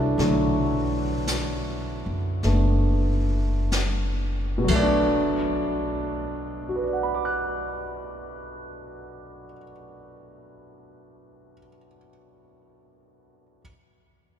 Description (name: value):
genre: jazz ballad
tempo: 40-58 BPM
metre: 4/4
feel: swing 68% on 8ths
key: B minor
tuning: A4 = 440 Hz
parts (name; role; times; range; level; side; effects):
- warm concert grand piano; accompaniment; 0.0-13.6 s; B2 to F#6; -26 LUFS; equal; none
- upright bass; bass; 0.0-9.5 s; F#1 to F#2; -26 LUFS; equal; none
- jazz brush drum kit; drums; 0.2-4.9 s; brushed snare drum, crash cymbal, hi-hat, kick drum, snare drum; -31 LUFS; left 1 dB; none
room: wet cathedral reverb, RT60 6.2 s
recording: recorded in a church or concert hall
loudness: -22 LUFS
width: side -9 dB against mid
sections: 0.0-5.2 A section; 5.2-11.1 B section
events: slowing down 0.0-5.2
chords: 0.0 Bm7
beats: | 0.19 1.27 2.43 3.72 | 5.15 6.65 8.14 9.61